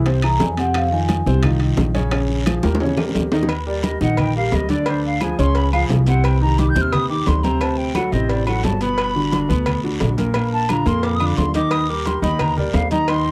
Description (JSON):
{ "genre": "Afro-Cuban jazz", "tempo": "175 BPM", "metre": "4/4", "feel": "straight", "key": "Eb major from 3.5 s", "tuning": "A4 = 440 Hz", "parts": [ { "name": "warm concert grand piano", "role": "accompaniment", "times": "0.0-13.3 s", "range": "Bb2 to Eb5", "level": "-24 LUFS", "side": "equal", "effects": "none" }, { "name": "upright bass", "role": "bass", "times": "0.0-13.3 s", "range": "G1 to F2", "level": "-23 LUFS", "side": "equal", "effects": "none" }, { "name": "bongos and cowbell", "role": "percussion", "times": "0.1-13.3 s", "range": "none", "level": "-30 LUFS", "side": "equal", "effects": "none" }, { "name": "congas", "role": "percussion", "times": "0.1-13.3 s", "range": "none", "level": "-28 LUFS", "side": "equal", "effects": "none" }, { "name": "guiro", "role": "percussion", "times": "0.1-13.3 s", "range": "none", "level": "-39 LUFS", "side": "equal", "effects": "none" }, { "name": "timbales and agogo bells", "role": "percussion", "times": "0.1-13.3 s", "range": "none", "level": "-30 LUFS", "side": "equal", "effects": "none" }, { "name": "vibraphone with medium mallets", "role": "melody", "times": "0.2-1.2 s", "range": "F5 to Bb5", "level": "-24 LUFS", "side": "equal", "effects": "none" }, { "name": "claves", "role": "percussion", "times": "0.2-13.3 s", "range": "none", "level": "-37 LUFS", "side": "equal", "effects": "none" }, { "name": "silver concert flute", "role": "second line", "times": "3.7-13.3 s", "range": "C5 to G6", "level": "-26 LUFS", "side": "equal", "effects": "none" } ], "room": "little or no reverb", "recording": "dry, close 1970s-style studio recording", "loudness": "-19 LUFS", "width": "mono", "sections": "0.0-3.5 A section; 3.5-13.3 A section", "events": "vibraphone solo 0.0-3.5; drum fill 2.6-3.5; flute solo 3.5-13.3", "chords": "0.1 Caug; 0.8 Fm7; 2.1 Bbm7; 2.8 Eb7; 3.5 Ebmaj7; 4.9 Ddim; 5.6 Db; 6.2 Cmadd9; 7.6 D7; 9.0 Gmaj7; 10.4 Bb; 11.7 Eb", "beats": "0.06 0.41 | 0.75 1.09 1.44 1.78 | 2.12 2.46 2.81 3.15 | 3.50 3.84 4.18 4.53 | 4.87 5.21 5.56 5.90 | 6.24 6.59 6.93 7.27 | 7.62 7.96 8.30 8.64 | 8.98 9.33 9.67 10.01 | 10.35 10.70 11.04 11.38 | 11.72 12.06 12.40 12.74 | 13.09" }